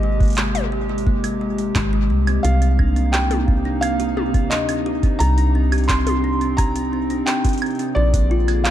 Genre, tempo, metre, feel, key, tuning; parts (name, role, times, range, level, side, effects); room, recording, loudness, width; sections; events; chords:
IDM; 87 BPM; 4/4; straight; C minor; A4 = 438 Hz
felt-muted upright piano; melody; 0.0-8.7 s; D5 to C6; -26 LUFS; equal; tape echo
warbly tape-like pad; sustained chords; 0.0-8.7 s; C3 to Ab4; -26 LUFS; right 1 dB; chorus, built-in reverb
kalimba; arpeggios; 0.0-8.7 s; Ab3 to G4; -24 LUFS; left 2 dB; ping-pong delay
woody FM bass; bass; 0.0-8.7 s; Ab1 to D2; -20 LUFS; equal
electro analog drum machine; drums; 0.2-8.7 s; handclaps, hi-hat, toms, woodblock; -26 LUFS; equal; overdrive, ping-pong delay
electronic kick drum; drums; 0.2-8.3 s; -19 LUFS; equal; overdrive
light reverb, digital ambience; dark, warm production; -16 LUFS; side -11 dB against mid
0.0-8.7 A section
0.0 Abmaj7; 2.4 Cm7; 8.0 Bb7